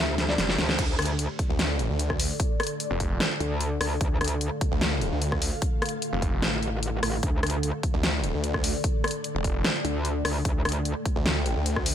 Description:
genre	heavy wobble dubstep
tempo	149 BPM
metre	4/4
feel	half-time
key	D minor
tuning	A4 = 440 Hz
part	felt-muted upright piano	melody	0.0-0.8 s	C5 to E5	-35 LUFS	equal	ping-pong delay
part	evolving wavetable pad	sustained chords	0.0-11.9 s	D3 to G5	-33 LUFS	equal	ensemble chorus, built-in reverb, sidechain pumping
part	metallic wobble bass	bass	0.0-10.9 s	A1 to D2	-27 LUFS	equal	chorus, overdrive
part	big-room dance drum kit	drums	0.2-11.9 s	crash cymbal, hi-hat, rim click, snare drum	-28 LUFS	left 1 dB	none
part	snarling distorted saw bass	bass	0.4-11.9 s	F1 to D2	-28 LUFS	equal	distortion, overdrive
part	electronic kick drum	drums	0.8-11.8 s	none	-27 LUFS	equal	none
room	digital ambience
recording	none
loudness	-24 LUFS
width	side -10 dB against mid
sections	0.8-11.9 A section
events	drum fill 0.2-0.8; band accent 0.7; drop 0.8-11.9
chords	0.0 D5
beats	0.38 | 0.79 1.19 1.59 2.00 | 2.40 2.80 3.20 3.60 | 4.01 4.41 4.81 5.22 | 5.62 6.02 6.42 6.83 | 7.23 7.63 8.04 8.44 | 8.84 9.24 9.65 10.05 | 10.45 10.85 11.26 11.66

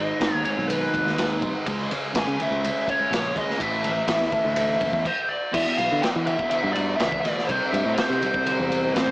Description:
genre	psychedelic rock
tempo	124 BPM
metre	4/4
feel	straight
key	E phrygian from 5.5 s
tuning	A4 = 440 Hz
part	biting lead guitar	melody	0.0-9.1 s	B4 to G#5	-25 LUFS	equal	wah, overdrive, tape echo
part	fuzz guitar	riff	0.0-9.1 s	E2 to C#4	-28 LUFS	right 1 dB	distortion, phaser
part	picked electric bass	bass	0.0-9.1 s	F1 to E3	-29 LUFS	equal	none
part	crunchy breakbeat drum kit	drums	0.2-9.1 s	crash cymbal, kick drum, ride cymbal, snare drum	-26 LUFS	equal	none
part	congas	percussion	0.4-8.8 s	none	-39 LUFS	left 1 dB	none
room	moderate spring reverb, RT60 1.2 s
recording	small speaker sound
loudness	-21 LUFS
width	side -22 dB against mid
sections	0.0-5.5 A section; 5.5-9.1 B section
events	stop 5.1-5.5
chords	0.0 G#m; 1.7 C#m; 3.6 Asus4; 5.5 Em; 7.5 C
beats	0.21 0.69 1.18 | 1.66 2.15 2.63 3.12 | 3.61 4.09 4.58 5.06 | 5.55 6.04 6.52 7.01 | 7.49 7.98 8.46 8.95

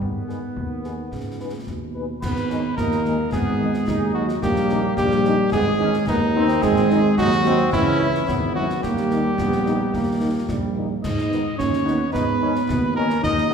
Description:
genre	military-style march for wind band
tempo	109 BPM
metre	2/4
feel	straight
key	G# minor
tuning	A4 = 441 Hz
part	dark euphonium	second line	0.0-13.5 s	B2 to D#4	-24 LUFS	right 2 dB	none
part	warm trombone section	sustained chords	0.0-13.5 s	G3 to D#4	-28 LUFS	right 1 dB	none
part	mellow tuba	bass	0.0-13.5 s	G#1 to G#2	-25 LUFS	right 2 dB	none
part	concert bass drum, concert snare drum and clash cymbals	drums	0.0-13.5 s	none	-30 LUFS	left 2 dB	none
part	warm cornet	melody	0.3-13.5 s	D#4 to D#5	-25 LUFS	equal	none
part	mellow French horn section	accompaniment	0.3-13.5 s	D#3 to B4	-30 LUFS	left 4 dB	none
room	wet recital hall reverb, RT60 1.7 s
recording	recorded in a church or concert hall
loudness	-18 LUFS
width	side -6 dB against mid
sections	0.0-2.2 A section; 2.2-13.5 A section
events	none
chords	0.0 G#m; 4.4 D#7/A#; 5.5 G#m; 6.6 G#7; 7.7 C#m; 8.8 D#; 11.0 G#m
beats	| 0.02 0.57 | 1.12 1.67 | 2.22 2.77 | 3.33 3.88 | 4.43 4.98 | 5.53 6.08 | 6.63 7.18 | 7.73 8.28 | 8.83 9.38 | 9.93 10.48 | 11.03 11.58 | 12.13 12.68 | 13.23

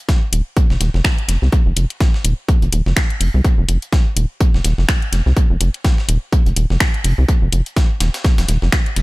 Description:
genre	minimal techno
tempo	125 BPM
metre	4/4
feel	swing 57% on 16ths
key	unclear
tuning	A4 = 443 Hz
part	breakbeat sampler-style drum kit	drums	0.1-9.0 s	hi-hat, snare drum	-29 LUFS	equal	sidechain pumping on hats, high-pass filter on hats, high-pass filter on snare, high-pass filter on room, analog delay
part	electronic kick drum	drums	0.1-8.8 s	none	-15 LUFS	equal	none
part	rubbery square bass	bass	0.3-9.0 s	Eb1 to C2	-15 LUFS	equal	sidechain pumping
part	house drum kit	drums	0.3-9.0 s	finger snaps, hi-hat	-21 LUFS	left 1 dB	analog delay
room	little or no reverb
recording	echo-heavy mix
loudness	-14 LUFS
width	side -21 dB against mid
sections	0.0-9.0 A section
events	none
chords	none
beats	0.09 0.57 1.05 | 1.53 2.01 2.49 2.97 | 3.45 3.93 4.41 4.89 | 5.37 5.85 6.33 6.81 | 7.29 7.77 8.25 8.73

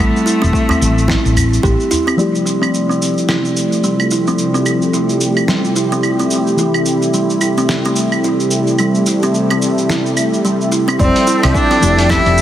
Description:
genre	organic downtempo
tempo	109 BPM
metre	4/4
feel	swing 59% on 16ths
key	unclear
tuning	A4 = 440 Hz
part	clear cello	melody	0.0-1.6, 11.0-12.4 s	A3 to E4	-16 LUFS	equal	tape echo
part	kalimba	arpeggios	0.0-12.2 s	G3 to G4	-17 LUFS	right 1 dB	low-pass filter, tape echo
part	woody fretless electric bass	bass	0.0-1.7, 11.0-12.4 s	E1 to C2	-15 LUFS	equal	ensemble chorus, sidechain pumping
part	dusty soul sampler-style drum kit	drums	0.0-12.4 s	claves, hi-hat, shaker, snare drum	-21 LUFS	right 1 dB	none
part	electronic kick drum	drums	0.5-1.8, 11.0-12.2 s	none	-18 LUFS	equal	none
part	udu	percussion	0.7-2.0 s	none	-22 LUFS	left 1 dB	none
part	muted felt-like synth keys	accompaniment	2.2-12.4 s	E3 to G4	-22 LUFS	left 3 dB	chorus, sidechain pumping, tape echo
part	warm analog pad	sustained chords	2.2-12.4 s	C3 to G5	-18 LUFS	right 1 dB	chorus, sidechain pumping
part	bronze singing bowl	texture	2.2-12.4 s	D5	-28 LUFS	left 2 dB	none
room	moderate lush hall reverb, RT60 2.9 s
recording	heavily compressed radio sound, multiband compression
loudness	-12 LUFS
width	side -11 dB against mid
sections	0.0-2.2 A section; 2.2-11.0 B section; 11.0-12.4 C section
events	filter sweep on kalimba 2.2-11.0; filter sweep on analog synth pad 2.2-11.0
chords	0.0 Am7; 2.2 Fmaj9; 6.6 Am7; 11.0 Fmaj9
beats	0.54 1.09 1.64 | 2.19 2.74 3.29 3.84 | 4.39 4.94 5.49 6.04 | 6.59 7.14 7.69 8.24 | 8.79 9.35 9.89 10.45 | 11.00 11.55 12.10

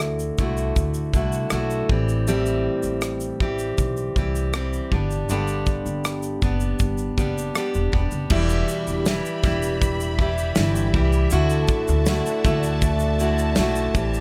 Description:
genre	acoustic pop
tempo	80 BPM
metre	4/4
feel	straight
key	unclear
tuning	A4 = 441 Hz
part	picked steel-string acoustic guitar	accompaniment	0.0-14.2 s	E2 to G4	-26 LUFS	equal	none
part	upright bass	bass	0.0-14.2 s	E1 to D2	-27 LUFS	equal	none
part	modern studio drum kit	drums	0.0-14.2 s	crash cymbal, kick drum, rim click, shaker, snare drum	-27 LUFS	equal	none
part	warm studio string section	sustained chords	8.3-14.2 s	F#4 to B5	-34 LUFS	equal	none
room	light reverb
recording	none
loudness	-22 LUFS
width	mono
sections	0.0-8.3 A section; 8.3-14.2 B section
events	none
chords	0.0 Dadd9; 1.9 Am7; 4.9 G; 8.3 Em; 11.3 Dadd9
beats	0.01 0.77 1.52 | 2.27 3.03 3.79 4.54 | 5.29 6.05 6.80 7.55 | 8.31 9.06 9.81 10.56 | 11.32 12.07 12.82 13.57

